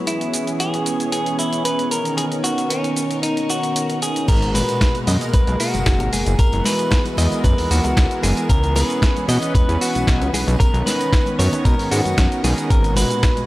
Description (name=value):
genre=nu-disco, nu disco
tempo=114 BPM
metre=4/4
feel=straight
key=G# minor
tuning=A4 = 440 Hz
part: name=warm analog pad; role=accompaniment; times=0.0-13.5 s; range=A#2 to C#5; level=-24 LUFS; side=right 1 dB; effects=chorus, sidechain pumping
part: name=string machine, full ensemble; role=sustained chords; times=0.0-13.5 s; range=B3 to C#6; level=-31 LUFS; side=equal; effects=ensemble chorus, sidechain pumping
part: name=direct-recorded clean electric guitar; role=melody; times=0.1-13.5 s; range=C#4 to D#5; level=-23 LUFS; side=equal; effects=spring reverb, analog delay
part: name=dusty soul sampler-style drum kit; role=drums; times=0.1-13.5 s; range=cabasa, crash cymbal, hi-hat, snare drum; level=-25 LUFS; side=equal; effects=none
part: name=fat analog bass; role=bass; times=4.3-13.0 s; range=F#1 to B2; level=-20 LUFS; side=equal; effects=sidechain pumping
part: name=electronic kick drum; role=drums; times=4.3-13.3 s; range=none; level=-16 LUFS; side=equal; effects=none
part: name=tambourine, congas and bongos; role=percussion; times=4.3-13.5 s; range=none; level=-31 LUFS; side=left 4 dB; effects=none
room=light reverb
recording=none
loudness=-16 LUFS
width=side -17 dB against mid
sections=0.0-4.3 A section; 4.3-13.5 B section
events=filter sweep on string machine 0.0-4.3; drop 4.3-13.5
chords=0.1 C#m7; 1.9 Bmaj9; 4.3 G#m9; 6.1 F#9sus4; 8.5 C#m7; 10.3 Bmaj9; 12.7 G#m9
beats=| 0.07 0.60 1.12 1.65 | 2.18 2.70 3.23 3.76 | 4.28 4.81 5.33 5.86 | 6.39 6.91 7.44 7.97 | 8.49 9.02 9.55 10.07 | 10.60 11.12 11.65 12.18 | 12.70 13.23